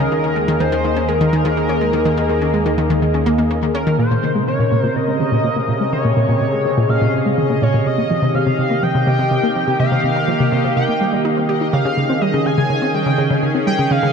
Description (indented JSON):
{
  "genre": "ambient, sequencer-driven space music",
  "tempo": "124 BPM",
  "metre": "4/4",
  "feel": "straight",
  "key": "Bb dorian",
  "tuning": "A4 = 440 Hz",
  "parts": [
    { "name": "pulse-width lead", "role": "melody", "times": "0.0-14.1 s", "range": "Bb4 to Ab5", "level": "-21 LUFS", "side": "equal", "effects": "chorus, ping-pong delay" },
    { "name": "sweeping resonant pad", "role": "sustained chords", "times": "0.0-14.1 s", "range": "C3 to Bb4", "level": "-20 LUFS", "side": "equal", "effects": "chorus" },
    { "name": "analog pluck", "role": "riff", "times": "0.0-14.1 s", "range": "Bb2 to G4", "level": "-18 LUFS", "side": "equal", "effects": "chorus, ping-pong delay" },
    { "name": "bubbling stepped-filter texture", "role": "texture", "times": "0.0-14.1 s", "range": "Eb5", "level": "-29 LUFS", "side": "left 2 dB", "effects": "chorus, built-in reverb" }
  ],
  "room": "wet huge ambient reverb, RT60 8.2 s",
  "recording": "dark, warm production",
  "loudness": "-14 LUFS",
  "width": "side -6 dB against mid",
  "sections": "0.0-4.0 A section; 4.0-14.1 A section",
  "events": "none",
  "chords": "0.1 Ebsus4; 4.0 Bbmadd9; 7.9 Cm; 11.7 Dbsus2"
}